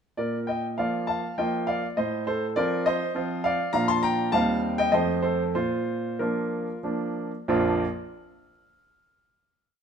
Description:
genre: classical-period piano sonatina.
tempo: 92-103 BPM.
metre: 3/4.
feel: rubato.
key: Bb major.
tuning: A4 = 440 Hz.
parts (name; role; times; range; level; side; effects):
clear grand piano; solo; 0.2-7.8 s; Bb1 to C6; -24 LUFS; equal; none.
room: moderate large studio reverb, RT60 1.3 s.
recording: minimal, uncompressed stereo recording.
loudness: -24 LUFS.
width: side -7 dB against mid.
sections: 0.2-7.5 A section; 7.5-9.4 final chord.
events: slowing down 2.9-7.5.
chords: 0.2 Bb; 2.0 F7/A; 3.7 Bb; 4.3 Cm/Eb; 4.9 F7; 5.5 Bb.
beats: | 0.17 0.78 1.38 | 1.97 2.57 3.15 | 3.73 4.32 4.92 | 5.55 6.20 6.84 | 7.48.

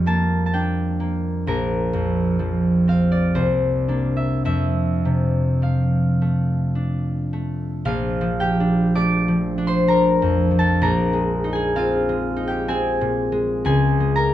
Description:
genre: classical, solo harp piece.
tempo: 51-66 BPM.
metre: 3/4.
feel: rubato.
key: F major, Bb major from 7.9 s.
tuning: A4 = 440 Hz.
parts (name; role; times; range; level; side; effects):
concert harp; solo; 0.0-14.3 s; Bb1 to D6; -18 LUFS; equal; none.
room: light reverb.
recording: dark, warm production.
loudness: -18 LUFS.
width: side -12 dB against mid.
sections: 0.0-7.9 A section; 7.9-14.3 B section.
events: none.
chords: 0.0 Gm7/F; 1.5 Bbadd9; 3.4 Csus2; 4.5 F6; 7.9 Bbmaj7; 10.8 Abadd9/Bb; 13.6 Dbmaj7.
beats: 0.55 | 1.48 2.40 3.37 | 4.45 5.62 6.75 | 7.85 8.90 9.87 | 10.80 11.76 12.69 | 13.64.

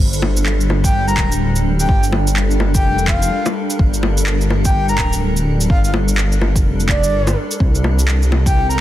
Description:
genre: future garage.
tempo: 126 BPM.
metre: 4/4.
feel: swing 61% on 16ths.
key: G minor.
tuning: A4 = 440 Hz.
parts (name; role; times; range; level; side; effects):
granular cloud pad; sustained chords; 0.0-8.8 s; G3 to C5; -23 LUFS; equal; built-in reverb, sidechain pumping.
dark detuned saw bass; bass; 0.0-8.8 s; D1 to C2; -17 LUFS; equal; sidechain pumping.
electronic shaker, bongos and handclaps; drums; 0.1-8.8 s; none; -22 LUFS; left 1 dB; overdrive.
breathy flute-like synth lead; melody; 0.8-8.8 s; D5 to Bb5; -22 LUFS; left 1 dB; lush chorus, dub echo.
electronic kick drum; drums; 0.8-8.5 s; none; -16 LUFS; equal; none.
room: light reverb.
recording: dense, heavily limited modern master, vinyl crackle.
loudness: -13 LUFS.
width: side -13 dB against mid.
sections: 0.0-8.8 A section.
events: none.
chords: 0.0 Gm; 7.6 C7(no3).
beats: 0.46 0.94 1.41 | 1.89 2.36 2.84 3.32 | 3.79 4.27 4.75 5.22 | 5.70 6.17 6.65 7.13 | 7.60 8.08 8.55.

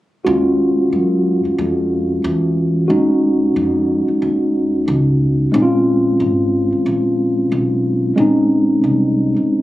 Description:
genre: hip hop.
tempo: 91 BPM.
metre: 4/4.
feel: swing 59% on 16ths.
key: Eb dorian.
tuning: A4 = 437 Hz.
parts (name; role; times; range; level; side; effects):
mellow tine electric piano; accompaniment; 0.2-9.6 s; Ab3 to Gb4; -14 LUFS; equal; fast stereo tremolo.
upright bass; bass; 0.3-9.4 s; Ab1 to Gb2; -22 LUFS; equal; none.
room: moderate studio reverb, RT60 0.6 s.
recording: recorded on a phone in the room, club reverb.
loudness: -14 LUFS.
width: side -16 dB against mid.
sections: 0.3-9.6 A section.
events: none.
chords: 0.3 Ebm11; 5.5 Bbm9.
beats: | 0.27 0.93 1.58 2.24 | 2.90 3.56 4.22 4.88 | 5.54 6.20 6.86 7.52 | 8.18 8.84 9.50.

